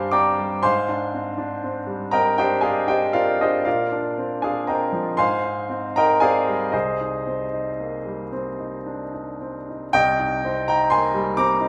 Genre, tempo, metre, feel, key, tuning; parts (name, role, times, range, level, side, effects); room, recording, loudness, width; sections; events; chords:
classical, impressionist solo piano; 39 BPM (dotted quarters); 6/8; uneven beats, rubato; C minor; A4 = 439 Hz
clear grand piano; solo; 0.0-11.7 s; C2 to F6; -22 LUFS; equal
moderate recital hall reverb, RT60 1.5 s; lossy compression artefacts; -22 LUFS; mono
0.0-9.9 A section; 9.9-11.7 B section
0.0 G7sus4; 0.6 Abmaj7#11; 3.7 Bbadd9; 5.2 Abmaj7; 6.7 Cm7